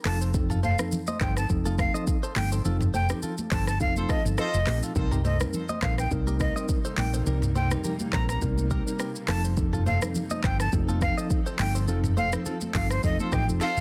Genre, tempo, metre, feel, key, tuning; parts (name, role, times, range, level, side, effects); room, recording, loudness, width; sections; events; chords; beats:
afrobeats; 104 BPM; 4/4; swing 55% on 16ths; A4 = 440 Hz
breathy bright jazz flute; melody; 0.1-13.8 s; C5 to Bb5; -34 LUFS; equal; digital delay
mellow tine electric piano; accompaniment; 0.1-13.7 s; F3 to Bb4; -35 LUFS; equal
direct-recorded clean electric guitar; riff; 0.1-13.7 s; Eb4 to Eb5; -40 LUFS; equal; spring reverb, digital delay
hollow-body short-scale fingered electric bass; bass; 0.1-13.8 s; F1 to C2; -30 LUFS; equal
afro-pop drum kit; drums; 0.1-13.8 s; handclaps, hi-hat, kick drum, rim click, shaker, snare drum, toms; -31 LUFS; equal
congas; percussion; 0.1-13.5 s; -39 LUFS; equal
warm horn section; second line; 4.0-4.6, 13.2-13.8 s; F4 to C5; -39 LUFS; equal; digital delay
granular cloud pad; sustained chords; 6.6-13.8 s; C3 to A4; -41 LUFS; equal
little or no reverb; dense, heavily limited modern master; -26 LUFS; mono
0.0-13.8 A section
band accent 2.6-5.0, 11.9-13.8; drum fill 13.6
0.1 F7; 5.0 Cm7; 9.3 F7
| 0.34 0.92 1.50 2.07 | 2.65 3.23 3.80 4.38 | 4.96 5.53 6.11 6.69 | 7.26 7.84 8.42 9.00 | 9.57 10.15 10.73 11.30 | 11.88 12.46 13.03 13.61